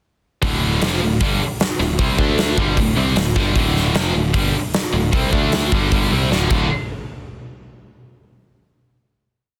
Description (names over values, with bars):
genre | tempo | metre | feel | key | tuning
hard rock | 153 BPM | 4/4 | straight | unclear | A4 = 439 Hz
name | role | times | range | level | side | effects
heavy high-gain guitar | riff | 0.4-6.7 s | D2 to D4 | -26 LUFS | equal | distortion
tight distorted guitar | riff | 0.4-6.7 s | D2 to D4 | -25 LUFS | equal | distortion
modern bright picked electric bass | bass | 0.4-6.7 s | D1 to D2 | -23 LUFS | equal | none
huge arena drum kit | drums | 0.4-6.6 s | crash cymbal, hi-hat, kick drum, snare drum | -22 LUFS | equal | none
room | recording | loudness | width
studio ambience | dense, heavily limited modern master | -18 LUFS | mono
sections
0.4-6.7 riff; 6.7-8.3 final hit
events
drum fill 6.3-6.7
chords
0.4 D5; 6.7 N.C.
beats
| 0.43 0.82 1.21 1.60 | 2.00 2.39 2.78 3.17 | 3.56 3.95 4.35 4.74 | 5.13 5.53 5.92 6.31